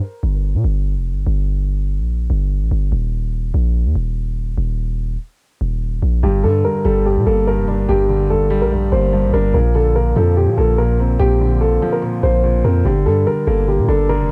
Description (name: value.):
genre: hip hop, drill.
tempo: 145 BPM.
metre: 4/4.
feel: half-time.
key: G minor.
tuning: A4 = 440 Hz.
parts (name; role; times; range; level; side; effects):
long sustained 808-style bass; bass; 0.2-14.3 s; Eb1 to Bb2; -19 LUFS; equal; none.
dark concert grand piano; melody; 6.2-14.3 s; G4 to C5; -21 LUFS; equal; cassette tape, tape echo.
dark baby grand piano; accompaniment; 6.2-14.3 s; G2 to D4; -22 LUFS; equal; cassette tape.
room: small room ambience.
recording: home recording on cassette.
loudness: -17 LUFS.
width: mono.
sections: 0.0-14.3 A section.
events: break 0.0-6.2.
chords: 0.0 Gm; 2.9 Eb5; 6.2 Gm; 9.5 Bbadd9; 12.9 Gm.